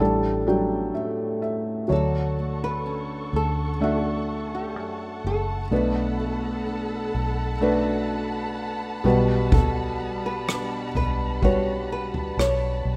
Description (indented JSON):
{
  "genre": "pop ballad",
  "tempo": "63 BPM",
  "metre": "4/4",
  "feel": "straight",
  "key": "unclear",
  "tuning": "A4 = 440 Hz",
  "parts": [
    { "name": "felt-muted upright piano", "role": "accompaniment", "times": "0.0-13.0 s", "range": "A2 to A5", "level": "-28 LUFS", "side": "equal", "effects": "none" },
    { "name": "fingerpicked steel-string acoustic guitar", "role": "arpeggios", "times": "0.0-13.0 s", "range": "A2 to A4", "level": "-37 LUFS", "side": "equal", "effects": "none" },
    { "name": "vintage muted fingered electric bass", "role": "bass", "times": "0.0-13.0 s", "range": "F#1 to F#2", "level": "-32 LUFS", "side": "equal", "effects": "none" },
    { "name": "nylon-string guitar", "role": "melody", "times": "1.9-13.0 s", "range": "F#4 to C#5", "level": "-32 LUFS", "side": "equal", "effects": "none" },
    { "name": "warm studio string section", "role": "sustained chords", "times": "1.9-13.0 s", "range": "G3 to C#6", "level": "-36 LUFS", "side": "equal", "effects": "none" },
    { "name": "unplugged drum kit", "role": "drums", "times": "9.5-12.6 s", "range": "kick drum, rim click, toms", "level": "-26 LUFS", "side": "equal", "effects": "none" }
  ],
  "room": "light reverb, studio reverb",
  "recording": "rough home demo mix",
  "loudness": "-25 LUFS",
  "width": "mono",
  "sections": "0.0-1.9 A section; 1.9-13.0 B section",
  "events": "felt piano fill 0.0-1.9",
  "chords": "0.0 A7sus4; 1.9 Dmaj7; 5.7 Bm7; 9.0 Gmaj7/B",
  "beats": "0.00 0.95 | 1.91 2.86 3.81 4.76 | 5.71 6.67 7.62 8.57 | 9.53 10.48 11.43 12.38"
}